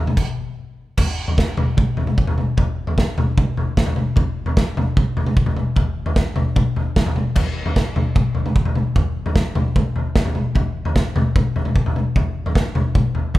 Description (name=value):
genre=rock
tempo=150 BPM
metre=4/4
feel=straight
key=none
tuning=none
part: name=loose indie drum kit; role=drums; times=0.1-13.4 s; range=crash cymbal, kick drum, snare drum, toms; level=-17 LUFS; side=equal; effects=none
room=moderate recital hall reverb, RT60 1.6 s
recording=recorded in a church or concert hall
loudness=-17 LUFS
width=side -16 dB against mid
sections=1.0-13.4 A section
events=stop 0.2-1.0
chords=none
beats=0.17 0.57 | 0.97 1.37 1.77 2.17 | 2.57 2.97 3.37 3.77 | 4.17 4.57 4.96 5.36 | 5.76 6.16 6.56 6.96 | 7.36 7.76 8.16 8.56 | 8.96 9.36 9.75 10.15 | 10.55 10.95 11.35 11.75 | 12.15 12.55 12.95 13.35